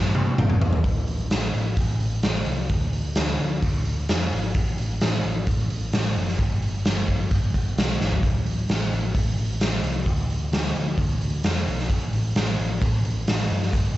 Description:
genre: hard rock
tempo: 131 BPM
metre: 4/4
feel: straight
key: A minor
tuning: A4 = 440 Hz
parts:
  - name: hollow-body short-scale picked electric bass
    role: bass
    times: 0.0-14.0 s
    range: F#1 to G2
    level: -26 LUFS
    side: equal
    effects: none
  - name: raw garage drum kit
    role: drums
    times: 0.1-13.8 s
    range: hi-hat, kick drum, snare drum, toms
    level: -23 LUFS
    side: equal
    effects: none
room: light reverb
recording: nothing above 7.9 kHz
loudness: -21 LUFS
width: side -15 dB against mid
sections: 0.9-14.0 A section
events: drum fill 0.0-0.9, 8.0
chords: none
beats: 0.39 | 0.85 1.31 1.78 2.24 | 2.70 3.17 3.63 4.09 | 4.55 5.02 5.48 5.94 | 6.40 6.86 7.32 7.78 | 8.24 8.70 9.15 9.61 | 10.07 10.53 10.98 11.44 | 11.90 12.36 12.82 13.27 | 13.73

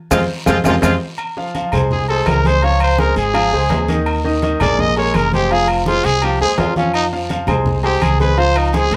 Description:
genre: latin, salsa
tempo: 167 BPM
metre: 4/4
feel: straight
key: F minor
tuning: A4 = 440 Hz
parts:
  - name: brilliant horn section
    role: melody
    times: 0.1-0.9 s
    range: F3 to F4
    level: -24 LUFS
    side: equal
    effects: none
  - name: bright trombone section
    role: second line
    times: 0.1-0.9 s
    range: C3 to Ab3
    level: -23 LUFS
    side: equal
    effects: none
  - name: clear concert grand piano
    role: accompaniment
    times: 0.1-9.0 s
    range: Eb3 to F5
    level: -21 LUFS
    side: equal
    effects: none
  - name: upright bass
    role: bass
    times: 0.1-9.0 s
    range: F1 to F2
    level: -22 LUFS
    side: equal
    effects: none
  - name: claves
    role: percussion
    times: 0.1-8.7 s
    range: none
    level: -32 LUFS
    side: equal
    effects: none
  - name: congas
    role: percussion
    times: 0.1-9.0 s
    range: none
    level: -25 LUFS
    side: equal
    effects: none
  - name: guiro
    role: percussion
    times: 0.1-9.0 s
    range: none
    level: -37 LUFS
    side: equal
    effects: none
  - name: maracas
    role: percussion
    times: 0.1-0.9 s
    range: none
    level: -32 LUFS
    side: equal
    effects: none
  - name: timbales and agogo bells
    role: percussion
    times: 0.1-9.0 s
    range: none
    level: -27 LUFS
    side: equal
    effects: none
  - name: growling trumpet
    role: melody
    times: 1.9-9.0 s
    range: C4 to Eb5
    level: -20 LUFS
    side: equal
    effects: none
room: moderate studio reverb, RT60 0.5 s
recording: none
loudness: -16 LUFS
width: mono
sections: 0.0-1.2 A section; 1.2-9.0 B section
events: band accent 0.0-1.2; drum fill 0.1-1.2; trumpet solo 1.2-9.0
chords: 0.0 Fm; 2.6 Dbmaj7; 4.1 Ebsus4; 5.5 Fm; 8.4 Dbmaj7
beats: 0.11 0.47 0.83 | 1.19 1.55 1.91 2.27 | 2.63 2.99 3.35 3.71 | 4.07 4.43 4.79 5.14 | 5.50 5.86 6.22 6.58 | 6.94 7.30 7.66 8.02 | 8.38 8.74

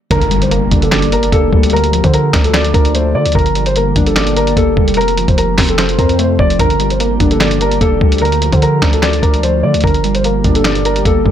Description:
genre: hip hop, trap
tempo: 148 BPM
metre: 4/4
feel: half-time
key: G minor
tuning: A4 = 440 Hz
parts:
  - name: dark concert grand piano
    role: melody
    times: 0.1-11.3 s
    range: A4 to D5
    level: -16 LUFS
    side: equal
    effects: low-pass filter, digital delay
  - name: warbly lo-fi synth keys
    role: accompaniment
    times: 0.1-11.3 s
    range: C3 to D5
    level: -18 LUFS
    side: equal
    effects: chorus, low-pass filter
  - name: glassy FM pad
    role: sustained chords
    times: 0.6-11.3 s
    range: C3 to G4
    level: -22 LUFS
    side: left 2 dB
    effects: ensemble chorus, built-in reverb
  - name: mellow synth brass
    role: stabs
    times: 0.1-10.8 s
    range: Bb1 to D3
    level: -22 LUFS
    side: right 2 dB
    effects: chorus
  - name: long sustained 808-style bass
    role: bass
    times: 0.1-11.3 s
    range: F1 to D3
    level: -17 LUFS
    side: equal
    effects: none
  - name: lo-fi sampler-style drum kit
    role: drums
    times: 0.1-11.3 s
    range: handclaps, hi-hat, kick drum, snare drum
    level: -14 LUFS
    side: equal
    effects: none
  - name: impact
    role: sound effects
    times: 0.1-1.7 s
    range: none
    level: -23 LUFS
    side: equal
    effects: none
room: little or no reverb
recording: none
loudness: -10 LUFS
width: side -10 dB against mid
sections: 0.1-11.3 A section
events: impact 0.1-1.7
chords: 0.1 Gm; 1.7 Dm; 3.4 Gm; 5.0 F; 6.6 Gm; 8.2 Dm; 9.8 Gm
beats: | 0.11 0.51 0.92 1.32 | 1.73 2.13 2.54 2.95 | 3.35 3.76 4.16 4.57 | 4.97 5.38 5.78 6.19 | 6.59 7.00 7.41 7.81 | 8.22 8.62 9.03 9.43 | 9.84 10.24 10.65 11.05

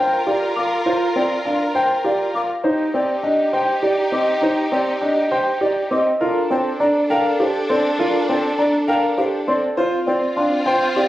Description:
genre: classical, minimalist pattern music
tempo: 101 BPM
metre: 3/4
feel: straight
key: G minor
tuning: A4 = 440 Hz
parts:
  - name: dark concert grand piano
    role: melody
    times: 0.0-11.1 s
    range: Bb4 to G5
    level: -21 LUFS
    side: left 1 dB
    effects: none
  - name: mellow soprano saxophone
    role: second line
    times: 0.0-11.1 s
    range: C4 to Bb4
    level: -27 LUFS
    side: right 1 dB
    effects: none
  - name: rich symphonic violin section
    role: sustained chords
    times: 0.0-11.1 s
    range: C4 to Bb4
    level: -26 LUFS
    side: left 2 dB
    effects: none
  - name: mellow hollow silver concert flute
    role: arpeggios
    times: 0.0-11.0 s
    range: Eb5 to D6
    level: -28 LUFS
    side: left 1 dB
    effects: none
  - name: warm concert grand piano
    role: arpeggios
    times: 0.0-11.1 s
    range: C4 to C5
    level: -21 LUFS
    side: right 2 dB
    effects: none
room: moderate recital hall reverb, RT60 1.6 s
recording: recorded on a phone in the room, studio ambience, compression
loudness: -16 LUFS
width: side -14 dB against mid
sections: 0.0-11.1 A section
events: none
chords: 0.0 Gm7; 2.6 Eb6; 6.2 Bbmaj9; 9.8 Dm7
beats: 0.27 | 0.86 1.46 2.05 | 2.65 3.24 3.83 | 4.43 5.02 5.62 | 6.21 6.80 7.40 | 7.99 8.59 9.18 | 9.78 10.37 10.96

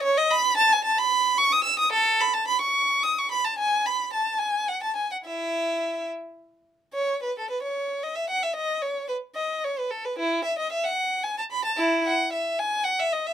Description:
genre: classical, baroque-style suite movement for unaccompanied violin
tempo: 73 BPM (dotted quarters)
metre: 6/8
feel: uneven beats, rubato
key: E major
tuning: A4 = 443 Hz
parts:
  - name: clear violin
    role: solo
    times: 0.0-13.3 s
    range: E4 to E6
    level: -22 LUFS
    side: equal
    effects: none
room: light reverb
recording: dark, warm production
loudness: -22 LUFS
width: side -10 dB against mid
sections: 0.0-6.9 A section; 6.9-13.3 B section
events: none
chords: none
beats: | 0.31 1.10 | 1.94 2.76 | 3.56 4.38 | 5.22 6.08 | 6.93 7.75 | 8.56 9.37 | 10.18 10.97 | 11.79 12.60

